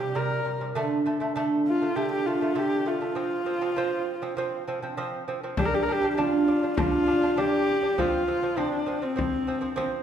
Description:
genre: mongolian traditional, Mongolian folk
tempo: 100 BPM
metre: 4/4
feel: straight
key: F zhi mode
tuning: A4 = 440 Hz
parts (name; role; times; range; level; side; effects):
- dark horsehead fiddle; melody; 0.0-10.0 s; C4 to Bb4; -26 LUFS; left 1 dB; none
- lute; arpeggios; 0.0-10.0 s; C3 to D4; -27 LUFS; right 2 dB; none
- frame drum; percussion; 5.6-9.9 s; none; -32 LUFS; left 2 dB; none
room: wet recital hall reverb, RT60 1.5 s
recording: minimal, uncompressed stereo recording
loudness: -24 LUFS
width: side -9 dB against mid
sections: 0.0-5.6 A section; 5.6-10.0 B section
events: none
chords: 0.0 C5; 0.8 D5; 3.2 F5; 5.6 G5; 8.0 F5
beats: 0.15 | 0.76 1.36 1.97 2.57 | 3.17 3.78 4.38 4.98 | 5.58 6.18 6.78 7.38 | 7.98 8.57 9.17 9.77

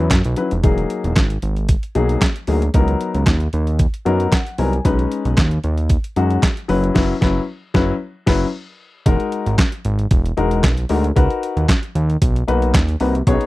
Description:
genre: early-eighties boogie funk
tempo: 114 BPM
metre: 4/4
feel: straight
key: unclear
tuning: A4 = 439 Hz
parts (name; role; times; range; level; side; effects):
- warm grand piano; accompaniment; 0.0-13.5 s; E3 to G#5; -20 LUFS; left 4 dB; none
- fat analog bass; bass; 0.0-13.4 s; E1 to F#2; -18 LUFS; equal; none
- detuned 8-bit digital drum machine; drums; 0.1-13.5 s; crash cymbal, handclaps, hi-hat, kick drum, snare drum; -16 LUFS; right 1 dB; none
room: little or no reverb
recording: dry, close 1970s-style studio recording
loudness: -15 LUFS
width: side -18 dB against mid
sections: 0.0-9.1 A section; 9.1-13.5 B section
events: grand piano fill 3.8-4.8; band accent 7.0-9.1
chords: 0.0 F#7sus4; 0.6 Emaj9#11; 2.7 C#13sus4; 4.8 B69; 6.7 F#7sus4; 9.1 Emaj9#11; 11.2 C#9sus4 (rootless)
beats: 0.11 | 0.64 1.16 1.69 2.22 | 2.74 3.27 3.79 4.32 | 4.85 5.37 5.90 6.43 | 6.95 7.48 8.01 8.53 | 9.06 9.58 10.11 10.64 | 11.16 11.69 12.22 12.74 | 13.27

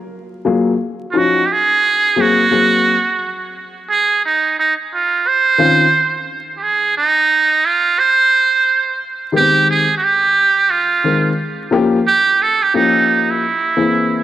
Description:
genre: hip hop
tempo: 88 BPM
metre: 4/4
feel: swing 61% on 16ths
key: unclear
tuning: A4 = 440 Hz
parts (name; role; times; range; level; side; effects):
- dark upright piano; accompaniment; 0.4-14.2 s; Eb3 to Bb4; -17 LUFS; left 4 dB; cassette tape
- trumpet with metal mute; melody; 1.1-14.2 s; Eb4 to C5; -13 LUFS; right 4 dB; cassette tape, tape echo
room: moderate lush hall reverb, RT60 2.7 s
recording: home recording on cassette, vinyl crackle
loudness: -12 LUFS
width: side -12 dB against mid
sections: 0.0-14.2 A section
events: none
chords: 0.0 Gbmaj9; 1.2 Ebm9; 2.5 Ab9; 3.9 Dbmaj9; 6.6 N.C.; 9.3 Abmaj7; 12.1 Gm7b5; 13.4 Caug7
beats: 0.47 | 1.15 1.83 2.52 3.20 | 3.88 4.56 5.25 5.93 | 6.61 7.29 7.97 8.65 | 9.34 10.02 10.70 11.38 | 12.06 12.74 13.43 14.11

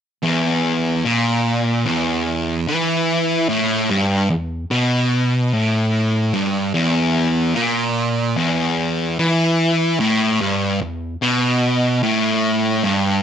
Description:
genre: metal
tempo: 74 BPM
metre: 4/4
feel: straight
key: unclear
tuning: A4 = 440 Hz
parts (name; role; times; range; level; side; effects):
- fuzz guitar; riff; 0.2-13.2 s; E2 to E3; -16 LUFS; equal; distortion
room: light reverb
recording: none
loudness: -16 LUFS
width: side -8 dB against mid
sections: 0.2-13.2 A section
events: none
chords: none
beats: | 0.23 1.05 1.86 2.68 | 3.49 4.30 5.12 5.93 | 6.75 7.56 8.37 9.19 | 10.00 10.81 11.62 12.43

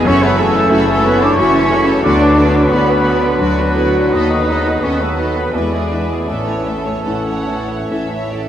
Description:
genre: classical, romantic movement for piano and orchestra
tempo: 68-93 BPM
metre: 3/4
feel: rubato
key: A major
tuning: A4 = 440 Hz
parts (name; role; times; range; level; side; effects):
- warm concert grand piano; melody; 0.0-8.5 s; D2 to B4; -18 LUFS; left 1 dB; none
- warm studio violin section; melody; 0.0-8.5 s; B4 to F#5; -28 LUFS; right 3 dB; none
- clear studio violin section; second line; 0.0-8.5 s; D4 to C#5; -26 LUFS; right 1 dB; none
- hollow flute section; second line; 0.0-8.5 s; E5 to D#6; -24 LUFS; equal; none
- warm clarinet; second line; 0.0-8.3 s; B3 to A4; -25 LUFS; left 3 dB; none
- warm studio viola section; accompaniment; 0.0-8.5 s; B3 to F#4; -27 LUFS; right 1 dB; none
- bright trombone section; sustained chords; 0.0-8.4 s; D3 to C#4; -27 LUFS; right 1 dB; none
- mellow trumpet; stabs; 0.0-8.3 s; F#4 to D#5; -22 LUFS; right 1 dB; none
- dark studio cello section; bass; 0.0-8.3 s; F#3 to D#4; -20 LUFS; equal; none
- clear oboe; second line; 0.1-8.3 s; B4 to D5; -25 LUFS; left 1 dB; none
- dark bassoon; accompaniment; 0.1-8.3 s; E3 to F#3; -24 LUFS; right 4 dB; none
- dark French horn section; sustained chords; 0.1-8.3 s; F#4 to D5; -24 LUFS; right 1 dB; none
- rich studio double bass section; bass; 0.1-8.5 s; F#1 to E2; -23 LUFS; equal; none
room: wet huge ambient reverb, RT60 6.9 s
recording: in a vast, echoing space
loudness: -12 LUFS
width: side -10 dB against mid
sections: 0.0-8.5 A section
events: none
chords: 0.1 F#m7; 2.0 Bm/D; 4.1 B7/D#; 5.5 E7; 6.3 A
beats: | 0.06 0.72 1.38 | 2.04 2.70 3.39 | 4.12 4.82 5.52 | 6.27 7.04 7.88

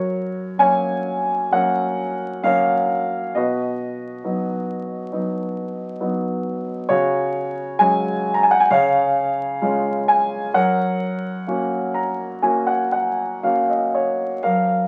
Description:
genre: classical, lyrical solo piano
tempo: 58-69 BPM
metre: 4/4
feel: rubato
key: F# major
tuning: A4 = 440 Hz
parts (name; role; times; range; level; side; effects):
- warm grand piano; solo; 0.0-14.9 s; F#2 to A#5; -21 LUFS; equal; none
room: moderate studio reverb, RT60 0.8 s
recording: very old 78 rpm record, vinyl crackle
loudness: -21 LUFS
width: mono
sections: 0.0-14.4 A section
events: grand piano fill 11.5-14.4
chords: 0.0 F#; 3.4 B; 6.9 C#sus4; 8.7 C#; 10.5 F#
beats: 0.60 1.53 2.44 | 3.35 4.25 5.13 6.01 | 6.89 7.80 8.71 9.62 | 10.55 11.48 12.44 13.44 | 14.44

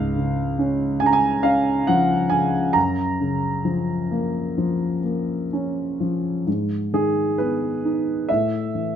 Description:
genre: classical, lyrical solo piano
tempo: 60-70 BPM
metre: 4/4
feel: rubato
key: G# dorian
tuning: A4 = 440 Hz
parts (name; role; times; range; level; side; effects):
- dark concert grand piano; solo; 0.0-9.0 s; C#2 to A#5; -19 LUFS; equal; none
room: moderate recital hall reverb, RT60 1.5 s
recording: close, detailed microphones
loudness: -19 LUFS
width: side -9 dB against mid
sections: 0.0-6.5 A section; 6.5-9.0 B section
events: none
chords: 0.0 C#; 2.8 F#maj7; 6.5 G#m; 8.3 A5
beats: 0.15 1.01 1.88 | 2.76 3.65 4.55 5.51 | 6.47 7.38 8.29

